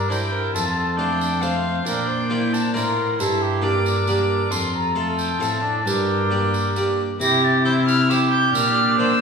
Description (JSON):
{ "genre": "classical, renaissance-style consort dance", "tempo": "135 BPM", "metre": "3/4", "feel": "straight", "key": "G dorian", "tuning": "A4 = 440 Hz", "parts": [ { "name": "dark violin", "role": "melody", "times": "0.0-9.2 s", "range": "F5 to Bb6", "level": "-24 LUFS", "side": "left 4 dB", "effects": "none" }, { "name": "mellow cor anglais", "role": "second line", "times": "0.0-9.2 s", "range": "E4 to C5", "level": "-25 LUFS", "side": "right 3 dB", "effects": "none" }, { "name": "harpsichord", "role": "accompaniment", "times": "0.0-9.2 s", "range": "F2 to F5", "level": "-26 LUFS", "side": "right 1 dB", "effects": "none" }, { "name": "rich viola", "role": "accompaniment", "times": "0.0-9.2 s", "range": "C4 to F4", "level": "-27 LUFS", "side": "equal", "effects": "none" }, { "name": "rich cello", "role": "bass", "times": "0.0-9.2 s", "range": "F2 to C3", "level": "-24 LUFS", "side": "left 1 dB", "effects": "none" }, { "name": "tambourine", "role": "percussion", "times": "0.1-8.8 s", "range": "none", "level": "-32 LUFS", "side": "right 3 dB", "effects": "none" } ], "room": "wet recital hall reverb, RT60 1.4 s", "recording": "recorded in a church or concert hall, studio reverb", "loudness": "-18 LUFS", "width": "side -5 dB against mid", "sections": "0.0-7.2 A section; 7.2-9.2 A section", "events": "none", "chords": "0.0 Gm; 0.5 F; 1.9 Bb; 3.2 Gm; 4.5 F; 5.9 Gm; 7.2 C; 8.5 Bb", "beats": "0.10 | 0.55 0.99 1.43 | 1.87 2.31 2.75 | 3.20 3.64 4.08 | 4.52 4.97 5.41 | 5.86 6.31 6.76 | 7.21 7.66 8.10 | 8.54 8.99" }